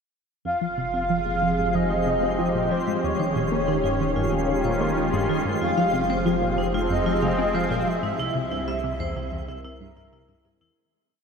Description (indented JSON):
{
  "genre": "ambient, sequencer-driven space music",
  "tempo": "93 BPM",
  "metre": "4/4",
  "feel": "straight",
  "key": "F minor",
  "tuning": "A4 = 440 Hz",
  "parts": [
    { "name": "breathy flute-like synth lead", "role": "melody", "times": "0.5-10.1 s", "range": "C5 to F5", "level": "-26 LUFS", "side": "equal", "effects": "ensemble chorus, tape echo" },
    { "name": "sweeping resonant pad", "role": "sustained chords", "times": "0.5-10.8 s", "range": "C3 to E5", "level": "-27 LUFS", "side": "equal", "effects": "chorus" },
    { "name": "vibraphone with hard mallets", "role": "arpeggios", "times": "0.5-10.7 s", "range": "Eb4 to F5", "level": "-36 LUFS", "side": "moving between left 2 dB and right 7 dB", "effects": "auto-pan, tape echo" },
    { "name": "tight sequenced synth", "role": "riff", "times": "0.5-10.7 s", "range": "C2 to C4", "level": "-28 LUFS", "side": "right 1 dB", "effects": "chorus, phaser, vintage 12-bit sampler grit, tape echo" },
    { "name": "round analog bass", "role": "bass", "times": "0.5-10.7 s", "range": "Eb1 to C2", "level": "-34 LUFS", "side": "equal", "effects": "none" },
    { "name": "twinkling granular texture", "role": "texture", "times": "1.3-10.8 s", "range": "Ab3 to C6", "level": "-32 LUFS", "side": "left 2 dB", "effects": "built-in reverb" }
  ],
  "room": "wet huge ambient reverb, RT60 8.2 s",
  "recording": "none",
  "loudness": "-21 LUFS",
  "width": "side -6 dB against mid",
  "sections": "0.5-10.8 A section",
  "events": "fade-in on vibraphone 0.5-10.8; fade-out 7.3-10.8",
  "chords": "0.5 Fm7; 3.0 Eb7; 5.6 Fm7; 8.2 C7",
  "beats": "| 0.45 1.10 1.74 2.39 | 3.03 3.68 4.32 4.97 | 5.61 6.26 6.90 7.55 | 8.19 8.84 9.48 10.13"
}